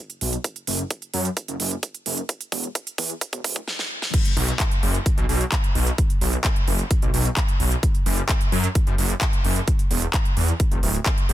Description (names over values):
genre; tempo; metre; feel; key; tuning
EDM, festival progressive house; 130 BPM; 4/4; straight; B minor; A4 = 439 Hz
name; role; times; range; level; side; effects
big-room dance drum kit; drums; 0.1-11.3 s; crash cymbal, handclaps, hi-hat, snare drum; -26 LUFS; right 2 dB; none
wide detuned saw bass; bass; 0.2-11.3 s; D1 to F#2; -23 LUFS; equal; chorus, sidechain pumping
electronic kick drum; drums; 0.4-11.2 s; none; -21 LUFS; equal; high-pass filter on kick
room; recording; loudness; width
little or no reverb; dense, heavily limited modern master, high-pass filter; -20 LUFS; side -14 dB against mid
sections
0.0-4.1 A section; 4.1-11.3 B section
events
build-up 0.0-4.1; drum fill 0.4-3.7, 3.7-4.1; drop 4.1-11.3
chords
none